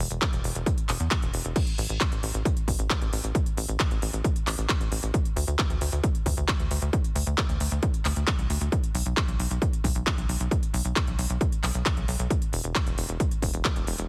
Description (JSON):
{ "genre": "uplifting trance", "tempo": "134 BPM", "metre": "4/4", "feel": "straight", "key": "unclear", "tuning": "A4 = 440 Hz", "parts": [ { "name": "tight sequencer bass", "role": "bass", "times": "0.0-14.1 s", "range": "E1 to E2", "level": "-30 LUFS", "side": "equal", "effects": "sidechain pumping" }, { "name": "techno drum kit", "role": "drums", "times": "0.1-14.1 s", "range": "crash cymbal, handclaps, hi-hat", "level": "-33 LUFS", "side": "equal", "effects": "sidechain pumping on hats, sidechain pumping on cymbals" }, { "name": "electronic kick drum", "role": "drums", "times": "0.2-13.7 s", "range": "none", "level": "-29 LUFS", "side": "equal", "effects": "none" } ], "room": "little or no reverb", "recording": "heavily compressed radio sound, multiband compression", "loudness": "-27 LUFS", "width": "mono", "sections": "0.0-14.1 A section", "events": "none", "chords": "none", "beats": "0.21 0.66 1.11 | 1.56 2.01 2.45 2.90 | 3.35 3.80 4.25 4.69 | 5.14 5.59 6.04 6.48 | 6.93 7.38 7.83 8.28 | 8.72 9.17 9.62 10.07 | 10.51 10.96 11.41 11.86 | 12.30 12.75 13.20 13.65" }